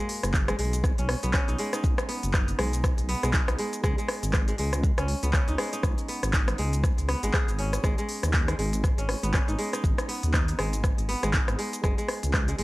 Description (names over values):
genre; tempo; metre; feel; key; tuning
afro house; 120 BPM; 4/4; swing 58% on 16ths; G# minor; A4 = 441 Hz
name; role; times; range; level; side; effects
kora; arpeggios; 0.0-12.6 s; G#3 to G#4; -32 LUFS; equal; sidechain pumping, analog delay
deep house drum kit; drums; 0.1-12.6 s; handclaps, hi-hat, rim click, shaker; -30 LUFS; equal; small room reverb
dark detuned saw bass; bass; 0.2-12.6 s; F#1 to D#2; -28 LUFS; equal; sidechain pumping
electronic kick drum; drums; 0.3-12.5 s; none; -26 LUFS; equal; small room reverb
room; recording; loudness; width
little or no reverb; dry, gritty hardware recording, transformer saturation, cassette tape; -24 LUFS; side -19 dB against mid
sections
0.0-12.6 A section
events
none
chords
0.0 B; 3.8 G#m; 11.8 F#5